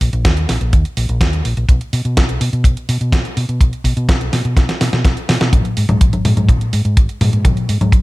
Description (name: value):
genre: italo disco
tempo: 125 BPM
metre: 4/4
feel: straight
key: unclear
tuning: A4 = 440 Hz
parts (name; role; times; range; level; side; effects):
- hollow-body short-scale fingered electric bass; bass; 0.0-8.0 s; Ab1 to Cb3; -17 LUFS; equal; none
- clean 12-bit digital drum machine; drums; 0.0-8.0 s; congas, hi-hat, snare drum, toms; -18 LUFS; equal; gated reverb
- kick drum; drums; 0.0-8.0 s; none; -12 LUFS; equal; none
room: little or no reverb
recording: none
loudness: -13 LUFS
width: side -20 dB against mid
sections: 0.0-5.5 A section; 5.5-8.0 B section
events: drum fill 4.6-5.5, 5.5-8.0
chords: none